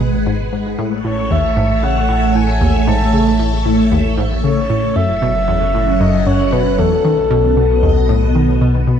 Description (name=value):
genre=ambient, sequencer-driven space music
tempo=115 BPM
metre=4/4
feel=straight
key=A lydian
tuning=A4 = 443 Hz
part: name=phased string machine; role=sustained chords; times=0.0-9.0 s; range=B2 to F#5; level=-18 LUFS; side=right 1 dB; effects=ensemble chorus, phaser
part: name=analog pluck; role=riff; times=0.0-9.0 s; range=D#2 to D#3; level=-18 LUFS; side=equal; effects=chorus, ping-pong delay
part: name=warm sub bass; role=bass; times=0.0-9.0 s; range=F#1 to B1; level=-18 LUFS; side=equal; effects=none
part: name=breathy flute-like synth lead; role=melody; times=1.0-8.6 s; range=A4 to A5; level=-18 LUFS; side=left 2 dB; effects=chorus, ping-pong delay
room=moderate plate reverb, RT60 3.3 s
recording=dark, warm production, nothing above 10.6 kHz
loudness=-12 LUFS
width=side -8 dB against mid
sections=0.0-9.0 A section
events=none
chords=0.0 G#m7; 0.8 A; 5.0 F#m; 7.0 B7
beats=0.27 | 0.79 1.31 1.83 2.35 | 2.87 3.40 3.92 4.44 | 4.96 5.48 6.00 6.53 | 7.05 7.57 8.09 8.61